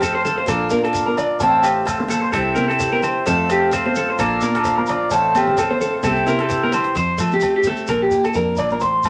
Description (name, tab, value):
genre	highlife guitar band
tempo	130 BPM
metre	4/4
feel	swing 54% on 16ths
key	F major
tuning	A4 = 441 Hz
part	picked acoustic archtop guitar	accompaniment	0.0-9.1 s	F2 to A4	-27 LUFS	equal	none
part	mellow accordion	sustained chords	0.0-7.0 s	C5 to Bb5	-27 LUFS	equal	none
part	electric guitar through a small old amp	arpeggios	0.0-9.1 s	G4 to D5	-21 LUFS	equal	phaser
part	fingered electric bass	bass	0.0-9.1 s	A1 to F3	-30 LUFS	equal	none
part	cajon	drums	0.0-9.1 s	none	-36 LUFS	equal	none
part	agogo bells	percussion	0.0-9.1 s	none	-32 LUFS	equal	none
part	shekere	percussion	0.0-9.1 s	none	-35 LUFS	equal	none
part	congas	percussion	0.3-8.8 s	none	-30 LUFS	equal	none
room	wet studio reverb, RT60 0.9 s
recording	none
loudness	-18 LUFS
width	mono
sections	0.0-7.0 A section; 7.0-9.1 B section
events	drum fill 6.0-7.0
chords	0.5 Bb; 1.4 F/A; 2.3 C; 3.3 F; 4.2 Bb; 5.1 F/A; 6.0 C; 7.0 F; 7.9 Bb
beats	0.03 0.49 0.95 | 1.42 1.88 2.34 2.80 | 3.26 3.73 4.19 4.65 | 5.11 5.58 6.04 6.50 | 6.96 7.43 7.89 8.35 | 8.82